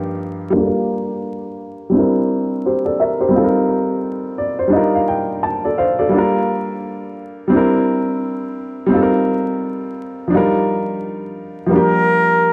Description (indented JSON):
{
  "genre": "lo-fi hip hop",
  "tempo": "86 BPM",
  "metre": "4/4",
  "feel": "swing 60% on 16ths",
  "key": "G minor",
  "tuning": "A4 = 440 Hz",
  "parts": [
    { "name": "warm upright piano", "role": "accompaniment", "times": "0.0-12.5 s", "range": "G2 to A5", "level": "-18 LUFS", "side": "equal", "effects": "low-pass filter" },
    { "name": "trumpet with plunger mute", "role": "melody", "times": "11.7-12.5 s", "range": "Bb4", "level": "-17 LUFS", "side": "equal", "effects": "none" }
  ],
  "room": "moderate plate reverb, RT60 2.5 s",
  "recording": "dark, warm production, vinyl crackle",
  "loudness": "-17 LUFS",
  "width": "mono",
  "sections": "0.5-11.7 A section",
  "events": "filter sweep on upright piano 0.5-11.7; upright piano fill 4.0-6.1",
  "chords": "0.0 Ebmaj9/G; 0.5 Gm7; 1.9 C9/G; 3.3 F9sus4; 6.1 Gm7; 7.5 C9/G; 8.9 F9sus4; 10.3 Ebmaj9/G; 11.7 Gm7"
}